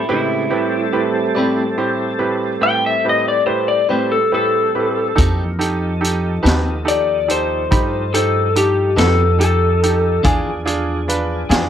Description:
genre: slow blues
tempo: 47 BPM (dotted quarters)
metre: 12/8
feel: straight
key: A minor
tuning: A4 = 440 Hz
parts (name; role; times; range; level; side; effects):
- electric slide guitar; melody; 0.0-10.2 s; G4 to G5; -16 LUFS; left 3 dB; none
- electric guitar through a small old amp; second line; 0.0-1.8 s; E4; -24 LUFS; right 4 dB; tape echo
- tonewheel organ; sustained chords; 0.0-11.7 s; C#3 to A4; -24 LUFS; right 1 dB; slow rotary speaker, chorus vibrato
- bright grand piano; accompaniment; 0.1-11.7 s; A2 to B5; -22 LUFS; right 4 dB; none
- clean electric guitar; accompaniment; 1.4-11.7 s; E3 to B4; -21 LUFS; left 3 dB; tremolo
- upright bass; bass; 5.2-11.7 s; Eb2 to G2; -19 LUFS; equal; none
- vintage drum kit; drums; 5.2-11.7 s; hi-hat, kick drum, snare drum; -19 LUFS; equal; none
room: light reverb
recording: none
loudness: -14 LUFS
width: side -9 dB against mid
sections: 0.0-11.7 A section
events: none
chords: 0.0 Am9; 5.2 F7; 10.3 E7b9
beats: | 0.10 1.37 2.63 3.90 | 5.17 6.44 7.71 8.98 | 10.25 11.52

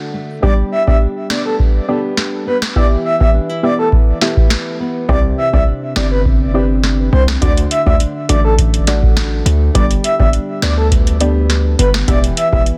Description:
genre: dancehall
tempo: 103 BPM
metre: 4/4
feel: straight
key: G major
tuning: A4 = 440 Hz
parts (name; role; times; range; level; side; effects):
- nylon-string guitar; arpeggios; 0.0-12.8 s; C3 to G4; -24 LUFS; equal; none
- breathy flute-like synth lead; melody; 0.4-12.6 s; A4 to E5; -21 LUFS; equal; chorus, delay
- soft round pluck; accompaniment; 0.4-12.7 s; A3 to E5; -24 LUFS; equal; chorus
- booming analog drum machine; drums; 0.4-12.8 s; hi-hat, kick drum, snare drum; -16 LUFS; equal; none
- hard-hitting 808-style bass; bass; 5.1-12.6 s; E1 to D2; -17 LUFS; equal; none
room: little or no reverb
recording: dense, heavily limited modern master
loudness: -14 LUFS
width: mono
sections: 0.0-12.8 A section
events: none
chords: 0.4 G; 2.8 Em; 5.1 Cadd9; 7.4 D; 9.7 G; 12.1 Em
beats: | 0.43 1.01 1.59 2.18 | 2.76 3.34 3.92 4.51 | 5.09 5.67 6.25 6.84 | 7.42 8.00 8.58 9.17 | 9.75 10.33 10.91 11.50 | 12.08 12.66

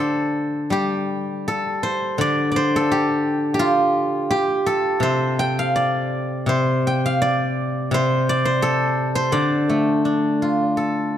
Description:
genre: chinese traditional, Chinese solo plucked strings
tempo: 78-86 BPM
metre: 2/4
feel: rubato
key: D yu mode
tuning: A4 = 441 Hz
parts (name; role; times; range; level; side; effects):
- steel-string zither; solo; 0.0-11.2 s; C3 to G5; -18 LUFS; equal; none
room: moderate concert hall reverb, RT60 2.4 s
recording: dark, warm production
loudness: -18 LUFS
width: side -10 dB against mid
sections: 0.7-11.2 A section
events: none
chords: none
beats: | 0.70 1.45 | 2.18 2.91 | 3.62 4.32 | 5.03 5.76 | 6.50 7.23 | 7.94 8.64 | 9.34 10.05 | 10.78

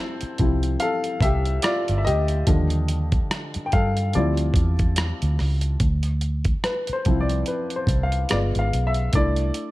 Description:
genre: R&B, neo-soul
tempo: 72 BPM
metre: 4/4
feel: swing 57% on 16ths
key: D phrygian, D dorian from 5.8 s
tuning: A4 = 440 Hz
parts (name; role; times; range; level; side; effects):
- dark baby grand piano; accompaniment; 0.0-9.7 s; D3 to G5; -25 LUFS; left 2 dB; none
- vintage muted fingered electric bass; bass; 0.2-9.5 s; G1 to G2; -22 LUFS; equal; none
- dusty soul sampler-style drum kit; drums; 0.2-9.7 s; hi-hat, kick drum, rim click; -24 LUFS; equal; overdrive
room: little or no reverb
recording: dark, warm production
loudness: -20 LUFS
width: side -18 dB against mid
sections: 0.0-5.8 A section; 5.8-9.7 B section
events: grand piano solo 0.0-5.8, 5.8-9.7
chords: 0.0 Dm11; 2.5 Ebmaj9; 4.1 Dm11; 5.8 Dm7; 8.3 G7b9; 9.1 C69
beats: 0.80 1.64 | 2.47 3.30 4.14 4.97 | 5.80 6.64 7.47 8.30 | 9.14

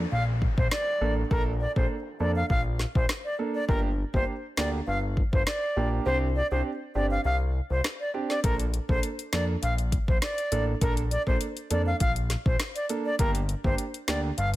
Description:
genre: dancehall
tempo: 101 BPM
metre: 4/4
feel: straight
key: Bb major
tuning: A4 = 440 Hz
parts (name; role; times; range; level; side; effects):
- fat analog bass; bass; 0.0-14.6 s; G1 to F2; -28 LUFS; equal; none
- downlifter; sound effects; 0.0-3.7 s; none; -44 LUFS; left 1 dB; none
- bright reedy wooden flute; melody; 0.1-14.5 s; Bb4 to F5; -30 LUFS; equal; ping-pong delay
- afro-pop drum kit; drums; 0.4-14.6 s; hi-hat, kick drum, rim click, snare drum; -28 LUFS; equal; none
- warm concert grand piano; accompaniment; 1.0-14.3 s; Bb3 to A4; -32 LUFS; right 4 dB; sidechain pumping
room: digital ambience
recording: none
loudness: -24 LUFS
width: side -16 dB against mid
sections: 0.0-14.6 A section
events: break 0.0-8.4; kick muted 6.1-8.4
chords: 0.0 Bbmaj7; 3.7 Gm; 6.1 Csus2; 8.4 Bbmaj7; 13.2 Gm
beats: 0.12 0.72 | 1.31 1.90 2.50 3.09 | 3.69 4.28 4.87 5.47 | 6.06 6.66 7.25 7.84 | 8.44 9.03 9.63 10.22 | 10.81 11.41 12.00 12.60 | 13.19 13.79 14.38

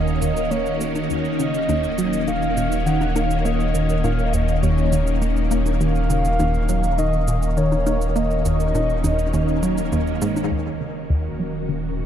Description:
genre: ambient, sequencer-driven space music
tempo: 102 BPM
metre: 4/4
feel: straight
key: Eb minor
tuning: A4 = 440 Hz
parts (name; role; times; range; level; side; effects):
- mellow horn-like synth lead; melody; 0.0-9.9 s; Db5 to Gb5; -26 LUFS; equal; chorus, ping-pong delay
- phased string machine; sustained chords; 0.0-12.1 s; Eb3 to Gb4; -24 LUFS; equal; ensemble chorus, phaser
- tight sequenced synth; riff; 0.0-12.1 s; Eb2 to Bb3; -24 LUFS; equal; chorus, ping-pong delay
- round analog bass; bass; 0.0-12.1 s; Eb1; -24 LUFS; equal; none
- cabasa and bongos; percussion; 0.1-10.5 s; none; -32 LUFS; left 2 dB; overdrive, ping-pong delay
- bubbling stepped-filter texture; texture; 10.7-12.1 s; Bb4; -46 LUFS; right 3 dB; none
room: moderate huge ambient reverb, RT60 8.4 s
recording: dark, warm production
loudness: -18 LUFS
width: side -10 dB against mid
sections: 0.0-10.5 A section; 10.5-12.1 B section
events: filter sweep on synth arpeggio sound 0.0-10.5, 10.5-12.1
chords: 0.0 Ebm7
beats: 0.51 | 1.10 1.69 2.28 2.86 | 3.45 4.04 4.63 5.22 | 5.81 6.39 6.98 7.57 | 8.16 8.75 9.34 9.92 | 10.51 11.10 11.69

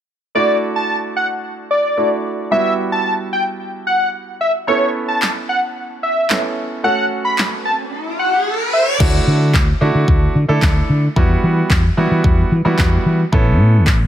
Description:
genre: dance-pop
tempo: 111 BPM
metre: 4/4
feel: straight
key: D major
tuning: A4 = 440 Hz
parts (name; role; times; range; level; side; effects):
- clear baby grand piano; accompaniment; 0.3-14.0 s; G3 to A4; -21 LUFS; right 3 dB; sidechain pumping
- wide unison lead; melody; 0.4-8.8 s; C#5 to B5; -17 LUFS; equal; tape echo
- deep house drum kit; drums; 5.2-14.0 s; crash cymbal, handclaps, kick drum, snare drum; -17 LUFS; equal; none
- riser; sound effects; 7.6-9.0 s; none; -22 LUFS; left 1 dB; none
- mellow fretless electric bass; bass; 9.0-14.0 s; A1 to E3; -14 LUFS; equal; sidechain pumping
room: light reverb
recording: none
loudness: -14 LUFS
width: side -10 dB against mid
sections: 0.4-9.0 A section; 9.0-14.1 B section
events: riser 7.6-9.0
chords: 0.4 Dadd9; 2.5 Emadd9; 4.7 Aadd9; 6.8 F#m; 9.0 Dadd9; 11.2 Emadd9; 13.3 Aadd9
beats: | 0.35 0.89 1.44 1.98 | 2.52 3.06 3.60 4.14 | 4.68 5.22 5.76 6.30 | 6.84 7.38 7.92 8.46 | 9.00 9.54 10.08 10.62 | 11.16 11.71 12.24 12.79 | 13.33 13.87

